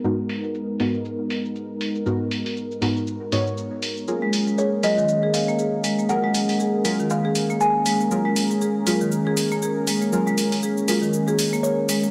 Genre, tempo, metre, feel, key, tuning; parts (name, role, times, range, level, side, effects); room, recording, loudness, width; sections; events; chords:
afro house; 119 BPM; 4/4; swing 57% on 16ths; A4 = 440 Hz
warm analog pad; sustained chords; 0.0-12.1 s; G#3 to A#4; -30 LUFS; equal; chorus
deep mellow chord stab; stabs; 0.0-12.1 s; G#2 to C#5; -30 LUFS; equal; chorus, delay
electronic cabasa and hi-hat; drums; 0.0-12.1 s; -30 LUFS; equal; overdrive, low-pass filter on perc, low-pass filter on hats, low-pass filter on room
marimba with medium mallets; arpeggios; 4.2-12.1 s; D#3 to G#4; -24 LUFS; equal; delay
kalimba; melody; 4.6-8.0, 11.6-12.1 s; C#5 to G#5; -26 LUFS; equal; delay
light reverb; -23 LUFS; mono
0.0-12.1 A section
filter sweep on analog synth pad 0.0-12.1
0.0 G#m9; 4.1 F#maj7